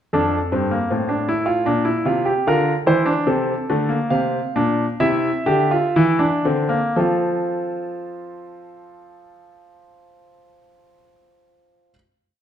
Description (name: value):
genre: classical, baroque-style 3-part fugue for grand piano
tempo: 57-80 BPM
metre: 4/4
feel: straight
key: F major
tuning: A4 = 440 Hz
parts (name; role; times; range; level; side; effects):
- clear concert grand piano; solo; 0.1-11.9 s; F2 to F5; -18 LUFS; equal; none
room: wet recital hall reverb, RT60 1.5 s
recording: dark, warm production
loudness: -17 LUFS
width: side -9 dB against mid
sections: 0.1-7.0 exposition; 7.0-11.2 final chord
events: slowing down 0.1-9.1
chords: 0.1 F; 1.7 Bb; 3.3 F/C; 5.0 C7; 7.0 F